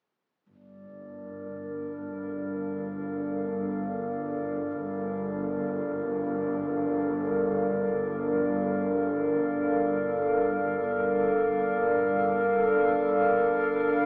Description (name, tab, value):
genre	ambient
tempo	free time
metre	none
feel	none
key	G minor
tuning	A4 = 440 Hz
part	warbly tape-like pad	sustained chords	1.1-14.1 s	G3 to F5	-29 LUFS	equal	chorus, built-in reverb
part	warm studio double bass section	bass	0.5-14.1 s	G1	-40 LUFS	equal	none
part	glass harmonica	texture	0.5-14.1 s	D5	-38 LUFS	equal	none
room	wet huge ambient reverb, RT60 7.3 s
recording	small speaker sound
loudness	-28 LUFS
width	mono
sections	0.5-14.1 A section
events	fade-in on glass harmonica 0.5-14.1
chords	0.5 Gm9